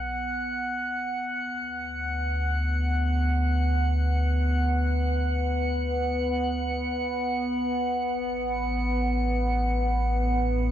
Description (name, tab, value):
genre	ambient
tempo	free time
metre	none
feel	none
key	unclear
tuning	A4 = 439 Hz
part	deep rumbling drone	bass	0.0-10.7 s	A1 to D2	-27 LUFS	equal	built-in reverb, phaser
part	analog drone	drone	0.0-10.7 s	B3	-30 LUFS	equal	chorus
part	drifting glass-harmonics texture	texture	0.0-10.7 s	F#5	-30 LUFS	right 1 dB	chorus, built-in reverb
room	wet huge ambient reverb, RT60 8.5 s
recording	dark, warm production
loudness	-24 LUFS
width	side -10 dB against mid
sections	0.0-10.7 A section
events	fade-in on synth drone 0.0-10.7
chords	0.0 B5; 1.0 D; 7.6 F#madd11/A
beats	free time